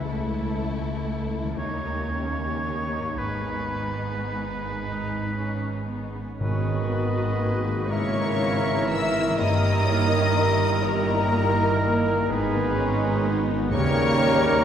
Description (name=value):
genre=classical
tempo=36-42 BPM (dotted quarters)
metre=6/8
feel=rubato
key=G# minor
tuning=A4 = 439 Hz
part: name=warm symphonic violin section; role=second line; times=0.0-14.6 s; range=C#4 to E5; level=-34 LUFS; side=left 2 dB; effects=none
part: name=rich studio viola section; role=accompaniment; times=0.0-14.6 s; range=G3 to G4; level=-31 LUFS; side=equal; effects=none
part: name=concert harp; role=arpeggios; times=0.0-14.6 s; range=G2 to A#5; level=-32 LUFS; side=left 1 dB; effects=none
part: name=rich symphonic cello section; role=bass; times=0.0-14.6 s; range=C#2 to E3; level=-33 LUFS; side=right 2 dB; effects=none
part: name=rich symphonic double bass section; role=bass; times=0.0-14.6 s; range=G1 to D#2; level=-30 LUFS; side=right 3 dB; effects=none
part: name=warm symphonic violin section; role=melody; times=0.1-14.6 s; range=G4 to E6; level=-34 LUFS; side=left 5 dB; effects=none
part: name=clear oboe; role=second line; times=1.6-14.6 s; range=A#4 to C#5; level=-33 LUFS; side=equal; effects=none
part: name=mellow clarinet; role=second line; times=6.4-14.6 s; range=A#4 to E5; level=-33 LUFS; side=left 1 dB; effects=none
part: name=warm bassoon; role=accompaniment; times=6.4-14.6 s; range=D#3 to G3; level=-33 LUFS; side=equal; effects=none
part: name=warm French horn section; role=sustained chords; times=6.4-14.6 s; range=A#3 to G#4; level=-33 LUFS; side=left 2 dB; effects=none
part: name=warm trombone section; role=sustained chords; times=6.4-14.6 s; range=D#3 to A#3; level=-34 LUFS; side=right 1 dB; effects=none
part: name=clear trumpet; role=stabs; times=6.4-14.6 s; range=G#4 to D#5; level=-30 LUFS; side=equal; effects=none
part: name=dark tuba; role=bass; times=6.4-14.6 s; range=G1 to D#2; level=-31 LUFS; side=right 2 dB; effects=none
part: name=timpani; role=percussion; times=6.4-7.9 s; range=G#2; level=-30 LUFS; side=right 1 dB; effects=none
part: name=bright large flute ensemble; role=second line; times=7.9-14.6 s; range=A#4 to E5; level=-31 LUFS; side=left 2 dB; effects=none
room=wet cathedral reverb, RT60 4.9 s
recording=recorded in a church or concert hall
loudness=-22 LUFS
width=side -9 dB against mid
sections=0.0-6.4 A section; 6.4-14.6 A section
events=none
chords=0.0 A/C#; 1.6 D#7; 3.2 G#m; 7.9 A#m7b5/G#; 9.4 D#/G; 12.3 G#m; 13.7 D#7